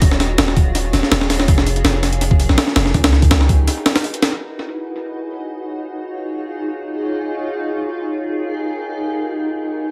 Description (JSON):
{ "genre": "drum and bass, jungle", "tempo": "164 BPM", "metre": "4/4", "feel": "straight", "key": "unclear", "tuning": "A4 = 440 Hz", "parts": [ { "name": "granular cloud pad", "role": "sustained chords", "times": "0.0-9.9 s", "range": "Eb4 to Db5", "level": "-26 LUFS", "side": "equal", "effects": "built-in reverb" }, { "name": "long sustained 808-style bass", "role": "bass", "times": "0.0-3.7 s", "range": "Eb1 to Db2", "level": "-19 LUFS", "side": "equal", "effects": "tube saturation" }, { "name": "breakbeat sampler-style drum kit", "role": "drums", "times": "0.0-4.3 s", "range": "hi-hat, kick drum, snare drum", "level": "-17 LUFS", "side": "equal", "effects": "analog delay" } ], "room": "light reverb", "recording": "echo-heavy mix", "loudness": "-18 LUFS", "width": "mono", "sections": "0.0-4.4 A section; 4.4-9.9 B section", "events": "break 3.7-4.4", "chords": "0.0 Ebm11; 1.5 Fm11; 2.9 Dbm11; 4.4 Ebm11; 7.3 Fm11; 8.8 Dbm11" }